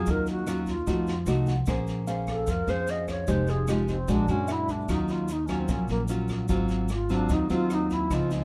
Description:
bossa nova; 149 BPM; 4/4; straight; Bb minor; A4 = 439 Hz
wooden-headed alto flute; melody; 0.0-8.4 s; Ab3 to Eb5; -33 LUFS; equal
nylon-string guitar; accompaniment; 0.0-8.4 s; Ab2 to C5; -31 LUFS; equal
upright bass; bass; 0.0-8.4 s; F1 to F#2; -32 LUFS; equal
jazz brush drum kit; drums; 0.1-8.4 s; kick drum, rim click, snare drum; -38 LUFS; equal
tube shaker; percussion; 0.1-8.4 s; -51 LUFS; equal
tine electric piano; accompaniment; 1.5-4.9 s; E5 to Gb5; -40 LUFS; equal
little or no reverb; dark, warm production; -27 LUFS; mono
0.0-1.7 A section; 1.7-8.4 B section
alto flute solo 1.7-8.4
0.1 Ebm9; 0.9 F7b9; 1.7 Bbm9; 3.3 Fm9; 4.1 Bbaug7; 4.9 Ebm9; 6.5 Ab6

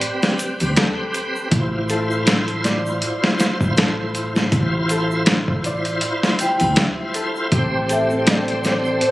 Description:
trip hop; 80 BPM; 4/4; swing 56% on 16ths; A4 = 440 Hz
bright tonewheel organ; accompaniment; 0.0-9.1 s; C4 to C5; -23 LUFS; equal; chorus vibrato, slow rotary speaker, tremolo, tape echo
concert harp; arpeggios; 0.0-9.1 s; G4 to E5; -27 LUFS; left 1 dB; digital delay
dusty soul sampler-style drum kit; drums; 0.0-9.1 s; hi-hat, kick drum, snare drum; -18 LUFS; equal
tube shaker and triangle; percussion; 0.0-9.1 s; -38 LUFS; right 1 dB
upright bass; bass; 0.6-9.0 s; A1 to D2; -24 LUFS; equal; tube saturation
muted studio violin section; sustained chords; 7.5-9.1 s; C4 to A4; -24 LUFS; equal
pure breathy sine lead; melody; 7.9-9.1 s; C5 to E5; -22 LUFS; equal; wide subtle chorus
light reverb, small room ambience; recorded on a phone in the room, club reverb, vinyl crackle, compression; -17 LUFS; side -17 dB against mid
0.0-9.1 A section
0.0 Am9; 1.5 Dm9/A; 7.5 Am7

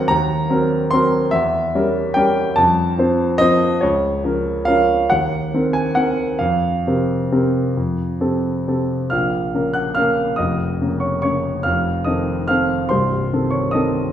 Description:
classical, piano waltz; 128-153 BPM; 3/4; rubato; Bb minor; A4 = 441 Hz
warm grand piano; solo; 0.0-14.1 s; C1 to Gb6; -16 LUFS; equal
wet recital hall reverb, RT60 1.6 s; heard from further back in the room; -16 LUFS; side -10 dB against mid
0.0-9.1 A section; 9.1-14.1 B section
0.0 Cm7b5/Eb; 1.3 Edim7; 2.6 F; 3.8 Bbm/Db; 5.1 Cm7b5/Eb; 6.4 Fsus4; 7.8 F; 9.1 Bbm; 11.7 F7

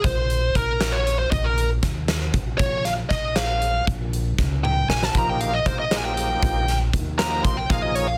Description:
progressive instrumental, band music in an uneven meter; 235 BPM (eighths); 5/8; straight; Bb dorian; A4 = 439 Hz
bluesy overdriven lead guitar; melody; 0.0-8.2 s; Bb4 to C6; -26 LUFS; equal; distortion
upright bass; bass; 0.0-8.2 s; Bb1 to Eb2; -27 LUFS; equal
huge arena drum kit; drums; 0.0-8.1 s; hi-hat, kick drum, snare drum, toms; -27 LUFS; equal; soft clipping on kick
overdriven tonewheel organ; accompaniment; 5.1-8.1 s; F3 to Ab4; -32 LUFS; equal; chorus vibrato
light reverb; dense, heavily limited modern master; -22 LUFS; mono
0.0-8.2 A section
lead electric guitar solo 0.0-8.2; drum fill 4.6-5.2
0.0 Cm7/Bb; 2.6 Bbm; 5.2 Bbsus4

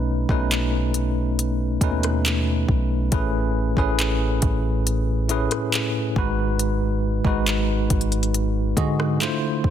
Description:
contemporary R&B; 69 BPM; 4/4; straight; A4 = 440 Hz
bell-like tine electric piano; accompaniment; 0.0-9.7 s; G#2 to D#5; -23 LUFS; equal; fast stereo tremolo
soft 808-style bass; bass; 0.0-9.7 s; G#1 to D3; -24 LUFS; equal
smooth R&B drum kit; drums; 0.3-9.7 s; handclaps, hi-hat, kick drum, rim click; -24 LUFS; equal; overdrive
digital ambience; dense, heavily limited modern master; -20 LUFS; side -10 dB against mid
0.0-9.7 A section
0.0 B7; 3.1 Amaj9; 6.2 G#m7

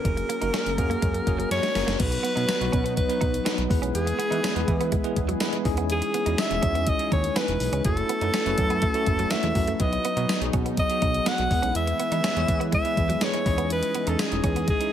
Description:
1980s-style pop; 123 BPM; 4/4; straight; B mixolydian; A4 = 440 Hz
clear alto saxophone; melody; 0.0-14.9 s; G#4 to F#5; -27 LUFS; equal
bell-like tine electric piano; accompaniment; 0.0-14.9 s; F#3 to C#5; -28 LUFS; equal; fast stereo tremolo
warm analog pad; sustained chords; 0.0-14.9 s; E3 to D#5; -36 LUFS; equal; chorus
gated 80s digital drum machine; drums; 0.0-14.9 s; crash cymbal, hi-hat, kick drum, snare drum, tambourine; -27 LUFS; equal; gated reverb, gated reverb snare, overdrive
fat analog bass; bass; 0.1-14.7 s; E1 to E3; -28 LUFS; equal
direct-recorded clean electric guitar; riff; 0.2-14.6 s; F#3 to D#4; -35 LUFS; right 8 dB; analog chorus, tape echo
little or no reverb; -22 LUFS; side -10 dB against mid
0.0-2.0 A section; 2.0-14.9 B section
drum fill 1.5-2.0
0.0 F#add9; 2.0 B; 3.7 E; 5.7 C#madd9/E; 7.8 F#m7; 9.8 B; 11.5 E; 13.5 C#madd9/E

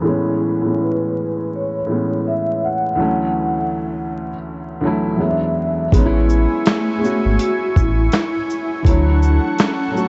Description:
lo-fi hip hop; 82 BPM; 4/4; swing 60% on 16ths; A major; A4 = 440 Hz
felt-muted upright piano; accompaniment; 0.0-10.1 s; D2 to C#5; -22 LUFS; equal; low-pass filter
vibraphone with soft mallets; melody; 0.8-10.1 s; A3 to F#5; -25 LUFS; equal; low-pass filter
lush unison pad; sustained chords; 5.9-10.1 s; A4 to C#6; -29 LUFS; equal; chorus, low-pass filter
round analog bass; bass; 5.9-9.4 s; G#1 to D2; -18 LUFS; equal
dusty soul sampler-style drum kit; drums; 5.9-10.1 s; handclaps, hi-hat, kick drum, shaker, snare drum; -19 LUFS; equal
moderate huge ambient reverb, RT60 9.1 s; dreamy mix soaked in reverb, vinyl crackle, nothing above 7.9 kHz; -18 LUFS; mono
0.0-5.9 A section; 5.9-10.1 B section
filter sweep 0.0-5.9
0.1 Amaj7; 3.0 Dmaj7; 5.2 E7; 5.9 Amaj7; 8.8 Dmaj7

